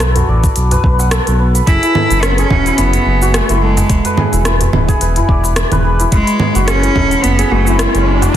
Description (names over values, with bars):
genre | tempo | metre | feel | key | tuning
organic downtempo | 108 BPM | 4/4 | swing 55% on 16ths | F# minor | A4 = 440 Hz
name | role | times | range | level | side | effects
santur | arpeggios | 0.0-8.4 s | E4 to B5 | -18 LUFS | left 1 dB | digital delay
smooth synth bass | bass | 0.0-8.4 s | D1 to B1 | -14 LUFS | equal | none
organic electronic drum kit | drums | 0.0-8.4 s | congas, hi-hat, rim click, shaker | -18 LUFS | right 1 dB | overdrive
darbuka | percussion | 0.2-8.3 s | none | -23 LUFS | equal | none
electronic kick drum | drums | 0.4-8.4 s | none | -14 LUFS | equal | none
clear cello | melody | 1.7-8.3 s | G#3 to E4 | -16 LUFS | right 1 dB | tape echo
riser | sound effects | 7.0-8.4 s | none | -22 LUFS | equal | none
room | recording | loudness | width
light reverb | dense, heavily limited modern master | -10 LUFS | side -10 dB against mid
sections
0.0-8.4 A section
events
riser 7.0-8.4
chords
0.0 Bm7; 1.7 F#m9; 3.9 E7; 6.1 F#m9